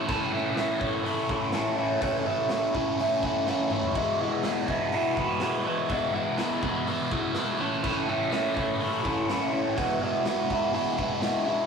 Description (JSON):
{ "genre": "garage rock duo or trio", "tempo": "124 BPM", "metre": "4/4", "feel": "straight", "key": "E major", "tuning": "A4 = 440 Hz", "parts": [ { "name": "biting overdriven guitar", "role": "riff", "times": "0.0-11.7 s", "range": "E2 to E4", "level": "-25 LUFS", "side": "equal", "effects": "phaser" }, { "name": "raw garage drum kit", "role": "drums", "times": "0.1-11.3 s", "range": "crash cymbal, hi-hat, kick drum, snare drum, toms", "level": "-34 LUFS", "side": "equal", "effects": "none" } ], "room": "wet small room reverb, RT60 0.6 s", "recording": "rough rehearsal-room recording, warm saturation, cassette tape", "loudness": "-24 LUFS", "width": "side -6 dB against mid", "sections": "0.0-11.7 A section", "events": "drum fill 3.5-4.0", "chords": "0.0 A; 4.0 E; 7.6 A; 9.8 E", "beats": "| 0.09 0.57 1.05 1.53 | 2.02 2.50 2.98 3.47 | 3.95 4.43 4.92 5.40 | 5.89 6.37 6.86 7.34 | 7.83 8.31 8.79 9.28 | 9.77 10.25 10.74 11.22" }